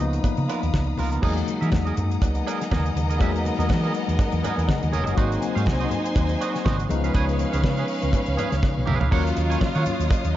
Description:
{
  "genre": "disco",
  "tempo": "122 BPM",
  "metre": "4/4",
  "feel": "swing 56% on 16ths",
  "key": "unclear",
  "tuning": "A4 = 437 Hz",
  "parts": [
    { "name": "tine electric piano", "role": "accompaniment", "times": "0.0-10.4 s", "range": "E3 to F#5", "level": "-28 LUFS", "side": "left 5 dB", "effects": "medium stereo tremolo" },
    { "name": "twangy electric guitar", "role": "accompaniment", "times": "0.0-10.3 s", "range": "B3 to G#5", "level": "-32 LUFS", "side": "right 7 dB", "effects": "spring reverb" },
    { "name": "rich symphonic string section", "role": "sustained chords", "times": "0.0-10.4 s", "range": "G#4 to D#6", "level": "-34 LUFS", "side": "left 3 dB", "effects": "none" },
    { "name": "hollow-body short-scale fingered electric bass", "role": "bass", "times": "0.0-10.3 s", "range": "E1 to E3", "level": "-24 LUFS", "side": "equal", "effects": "none" },
    { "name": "damped 70s drum kit", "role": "drums", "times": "0.1-10.3 s", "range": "crash cymbal, hi-hat, kick drum, snare drum, toms", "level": "-25 LUFS", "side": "equal", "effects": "none" },
    { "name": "congas", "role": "percussion", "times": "0.2-10.2 s", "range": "none", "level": "-33 LUFS", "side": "left 2 dB", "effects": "none" },
    { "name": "cowbell", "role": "percussion", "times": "0.2-10.2 s", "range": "none", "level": "-39 LUFS", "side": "right 9 dB", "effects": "none" },
    { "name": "rich studio violin section", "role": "second line", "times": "2.2-10.3 s", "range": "B3 to G#5", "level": "-30 LUFS", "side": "right 1 dB", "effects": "none" }
  ],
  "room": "studio reverb",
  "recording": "dark, warm production, nothing above 7.6 kHz",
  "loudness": "-20 LUFS",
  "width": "side -13 dB against mid",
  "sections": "0.0-1.2 A section; 1.2-9.1 B section; 9.1-10.4 C section",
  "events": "tine electric piano fill 4.2-5.2; drum fill 8.6-9.1",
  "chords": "0.0 C#13; 1.2 Emaj9#11; 5.2 G#7; 6.9 C#7; 9.1 D#m7",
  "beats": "0.24 0.74 | 1.23 1.72 2.22 2.71 | 3.20 3.70 4.19 4.68 | 5.18 5.67 6.16 6.66 | 7.15 7.64 8.13 8.63 | 9.12 9.61 10.10"
}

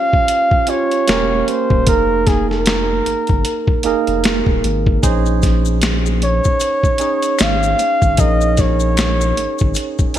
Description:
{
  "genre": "R&B, neo-soul",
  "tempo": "76 BPM",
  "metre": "4/4",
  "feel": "swing 58% on 16ths",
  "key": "Bb dorian",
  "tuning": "A4 = 436 Hz",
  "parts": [
    { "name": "breathy flugelhorn", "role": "melody", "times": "0.0-10.2 s", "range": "Ab4 to F5", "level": "-18 LUFS", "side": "equal", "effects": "ping-pong delay" },
    { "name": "barky tine electric piano", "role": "accompaniment", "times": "0.0-10.2 s", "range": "Bb3 to Db5", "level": "-20 LUFS", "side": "right 7 dB", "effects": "overdrive, lush chorus" },
    { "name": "boom bap sampler-style drum kit", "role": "drums", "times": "0.1-10.2 s", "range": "hi-hat, kick drum, snare drum", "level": "-17 LUFS", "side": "left 1 dB", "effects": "gated reverb" },
    { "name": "saturated sub bass", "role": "bass", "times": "1.1-10.2 s", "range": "Eb1 to Bb1", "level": "-19 LUFS", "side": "left 1 dB", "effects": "none" },
    { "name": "maracas and finger snaps", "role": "percussion", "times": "5.0-10.1 s", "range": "none", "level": "-29 LUFS", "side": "left 11 dB", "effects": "none" }
  ],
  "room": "light reverb, small room reverb",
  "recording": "bright 1980s-style digital production",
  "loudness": "-13 LUFS",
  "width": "side -11 dB against mid",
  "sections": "0.0-10.2 A section",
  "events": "none",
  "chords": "0.0 Eb9 (rootless); 1.1 Edim7; 1.9 Fm11; 5.0 Bbm7",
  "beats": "0.29 1.08 | 1.87 2.66 3.45 4.24 | 5.03 5.82 6.60 7.39 | 8.18 8.97 9.76"
}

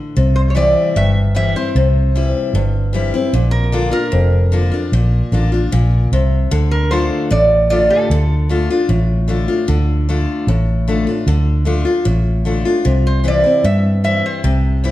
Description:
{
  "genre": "honky-tonk and classic country",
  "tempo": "151 BPM",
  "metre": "4/4",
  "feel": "straight",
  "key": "D minor",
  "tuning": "A4 = 444 Hz",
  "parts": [
    { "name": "picked steel-string acoustic guitar", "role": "accompaniment", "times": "0.0-14.9 s", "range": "F2 to F4", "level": "-19 LUFS", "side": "left 3 dB", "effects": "none" },
    { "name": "vintage muted fingered electric bass", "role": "bass", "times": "0.2-14.9 s", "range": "F1 to G2", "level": "-15 LUFS", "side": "equal", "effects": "none" },
    { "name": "lap resonator guitar", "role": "melody", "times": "0.4-8.7, 13.1-14.9 s", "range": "A4 to E5", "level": "-17 LUFS", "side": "right 2 dB", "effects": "slapback echo" }
  ],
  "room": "light reverb",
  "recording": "dark, warm production",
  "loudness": "-13 LUFS",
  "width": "side -15 dB against mid",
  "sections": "0.0-14.9 A section",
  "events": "none",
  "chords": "0.2 C; 3.3 Bb; 6.5 Dm; 12.9 C",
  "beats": "| 0.17 0.56 0.96 1.35 | 1.75 2.15 2.54 2.94 | 3.34 3.73 4.13 4.53 | 4.92 5.32 5.72 6.12 | 6.51 6.91 7.30 7.70 | 8.10 8.49 8.89 9.29 | 9.69 10.08 10.48 10.87 | 11.27 11.67 12.06 12.46 | 12.86 13.25 13.65 14.04 | 14.44 14.83"
}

